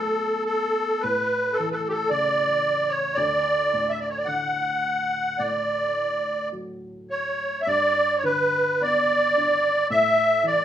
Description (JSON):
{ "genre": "celtic folk, Celtic slow air", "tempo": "52-57 BPM", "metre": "4/4", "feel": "rubato", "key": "D major", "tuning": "A4 = 440 Hz", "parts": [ { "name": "musette accordion", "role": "melody", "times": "0.0-10.6 s", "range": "G4 to F#5", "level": "-21 LUFS", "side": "equal", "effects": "none" }, { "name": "felt-muted upright piano", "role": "accompaniment", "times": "0.0-10.6 s", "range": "D2 to D4", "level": "-35 LUFS", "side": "left 1 dB", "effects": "none" } ], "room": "light reverb", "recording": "rough home demo mix, studio reverb", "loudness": "-21 LUFS", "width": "side -10 dB against mid", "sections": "0.0-7.7 A section; 7.7-10.6 B section", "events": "none", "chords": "0.0 B5; 1.0 A; 3.2 D; 7.7 G; 9.9 A5" }